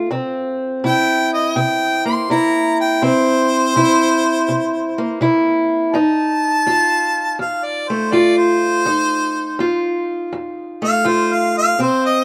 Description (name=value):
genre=acoustic country blues, solo or duo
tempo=82 BPM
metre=4/4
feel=swing 67% on 8ths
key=unclear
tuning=A4 = 438 Hz
part: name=fingerpicked steel-string acoustic guitar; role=accompaniment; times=0.0-12.2 s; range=F2 to F4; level=-19 LUFS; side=equal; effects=none
part: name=warm harmonica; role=melody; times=0.9-12.2 s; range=C5 to C6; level=-20 LUFS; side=equal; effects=none
room=light reverb, small room ambience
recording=rough home demo mix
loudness=-17 LUFS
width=mono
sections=0.0-12.2 A section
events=harmonica solo 0.0-12.2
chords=0.1 C7; 5.9 F7